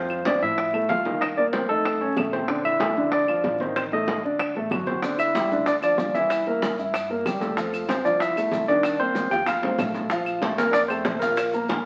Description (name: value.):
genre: Afro-Cuban jazz.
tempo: 189 BPM.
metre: 4/4.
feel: straight.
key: F major.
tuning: A4 = 440 Hz.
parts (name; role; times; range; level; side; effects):
overdriven tine electric piano; melody; 0.0-11.6 s; A4 to G5; -27 LUFS; equal; none.
breathy trombone; second line; 0.0-11.6 s; A3 to G4; -34 LUFS; equal; none.
warm concert grand piano; accompaniment; 0.0-11.8 s; D3 to F6; -29 LUFS; equal; none.
upright bass; bass; 0.0-11.8 s; G1 to A2; -44 LUFS; equal; none.
bongos; percussion; 0.1-11.9 s; none; -34 LUFS; equal; none.
claves; percussion; 0.1-11.5 s; none; -38 LUFS; equal; none.
congas; percussion; 0.1-11.9 s; none; -34 LUFS; equal; none.
maracas; percussion; 5.0-11.8 s; none; -46 LUFS; equal; none.
room: wet studio reverb, RT60 0.9 s.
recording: very old 78 rpm record, vinyl crackle.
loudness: -24 LUFS.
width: mono.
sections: 0.0-10.1 A section; 10.1-11.9 B section.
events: drum fill 9.2-10.1.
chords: 0.0 Fmaj7; 1.2 Cm7; 1.8 Faug7; 2.5 Bbmaj7; 3.8 Cm69/A (rootless); 4.4 D; 5.0 G5; 6.3 C7; 7.6 F6; 8.8 Cm7; 9.5 F; 10.1 Bb5.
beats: 0.26 0.58 0.89 | 1.21 1.53 1.85 2.17 | 2.49 2.80 3.12 3.44 | 3.76 4.08 4.39 4.71 | 5.03 5.35 5.66 5.98 | 6.30 6.62 6.93 7.25 | 7.57 7.89 8.20 8.52 | 8.84 9.16 9.47 9.79 | 10.11 10.42 10.74 11.06 | 11.38 11.69.